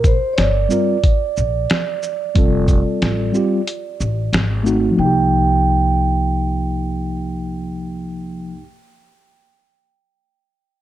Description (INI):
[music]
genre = hip hop, jazz-hop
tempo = 91 BPM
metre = 4/4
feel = swing 64% on 16ths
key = C dorian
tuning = A4 = 440 Hz
[part]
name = vibraphone with soft mallets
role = melody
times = 0.0-8.6 s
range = C5 to G5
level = -22 LUFS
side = right 5 dB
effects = low-pass filter, tape echo
[part]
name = upright bass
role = bass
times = 0.0-8.6 s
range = F1 to C2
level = -21 LUFS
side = equal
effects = none
[part]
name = lo-fi sampler-style drum kit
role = drums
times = 0.0-4.9 s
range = hi-hat, kick drum, shaker, snare drum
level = -17 LUFS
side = equal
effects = none
[part]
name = mellow tine electric piano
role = accompaniment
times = 0.7-8.7 s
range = F3 to Bb4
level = -19 LUFS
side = equal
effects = medium stereo tremolo, low-pass filter
[sound]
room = moderate spring reverb, RT60 1.9 s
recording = dark, warm production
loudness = -16 LUFS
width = side -13 dB against mid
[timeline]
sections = 0.0-5.0 A section; 5.0-7.6 B section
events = filter sweep 0.0-5.0; break 3.7-5.0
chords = 0.0 Bb69; 2.4 F; 4.3 Ab7b9; 5.0 Cm7